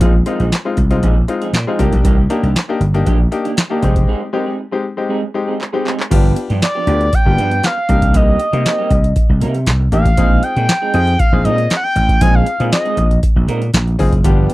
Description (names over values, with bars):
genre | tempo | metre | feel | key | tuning
early-eighties boogie funk | 118 BPM | 4/4 | straight | unclear | A4 = 439 Hz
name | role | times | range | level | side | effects
clear grand piano | accompaniment | 0.0-14.5 s | Ab3 to Ab4 | -20 LUFS | left 4 dB | none
electric guitar through a small old amp | riff | 0.0-14.5 s | Eb3 to Bb4 | -24 LUFS | right 6 dB | lush chorus
vintage slap bass | bass | 0.0-14.5 s | F1 to C3 | -15 LUFS | equal | none
booming analog drum machine | drums | 0.0-14.5 s | crash cymbal, handclaps, hi-hat, kick drum, snare drum | -14 LUFS | equal | none
expressive synth lead | melody | 6.6-13.2 s | D5 to Ab5 | -17 LUFS | equal | chorus
room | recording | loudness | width
little or no reverb | dry, close 1970s-style studio recording | -12 LUFS | side -18 dB against mid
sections
0.0-6.1 A section; 6.1-14.5 B section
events
break 4.1-6.1; drum fill 5.6-6.1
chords
0.0 Bb9sus4; 1.8 Cm9; 3.8 Fm7 (rootless); 6.1 G7; 7.9 Cm7; 10.2 Bb9sus4